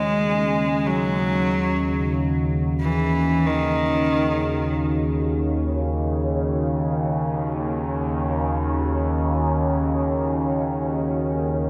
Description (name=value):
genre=dark ambient drone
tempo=free time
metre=none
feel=none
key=Eb minor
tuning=A4 = 440 Hz
part: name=rich cello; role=melody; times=0.0-4.8 s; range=Eb3 to Ab3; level=-25 LUFS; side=equal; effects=analog delay
part: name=deep dark ambient pad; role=sustained chords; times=1.8-11.7 s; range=Eb3 to Db5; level=-31 LUFS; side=equal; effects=chorus, built-in reverb
part: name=analog drone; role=drone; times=0.0-11.7 s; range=Eb2 to Db3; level=-25 LUFS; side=equal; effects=chorus, phaser
part: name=bronze singing bowl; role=texture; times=0.0-11.7 s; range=none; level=barely audible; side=none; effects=none
room=wet plate reverb, RT60 3.6 s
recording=echo-heavy mix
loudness=-23 LUFS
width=mono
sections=0.0-11.7 A section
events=fade-in on ambient pad 0.0-11.7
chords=0.0 Ebm7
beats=free time